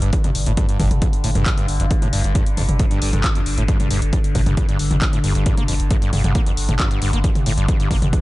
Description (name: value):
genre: driving peak-time techno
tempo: 135 BPM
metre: 4/4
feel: straight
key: unclear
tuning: A4 = 440 Hz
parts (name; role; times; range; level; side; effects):
- screaming distorted acid line; riff; 0.0-8.1 s; F2 to Bb3; -24 LUFS; equal; distortion, wide subtle chorus, sidechain pumping, tape echo
- saturated sub bass; bass; 0.0-8.1 s; G1; -21 LUFS; equal; tube saturation, sidechain pumping, low-pass filter
- overtone-sweeping drone; drone; 0.0-8.2 s; G2 to D3; -26 LUFS; left 1 dB; chorus, built-in reverb, sidechain pumping
- punchy analog drum machine; drums; 0.0-8.2 s; handclaps, hi-hat, toms; -24 LUFS; left 1 dB; overdrive
- electronic kick drum; drums; 0.1-8.2 s; none; -19 LUFS; equal; none
room: digital ambience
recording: nothing above 11.0 kHz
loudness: -16 LUFS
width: side -18 dB against mid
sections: 0.0-8.2 A section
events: none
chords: 0.0 G5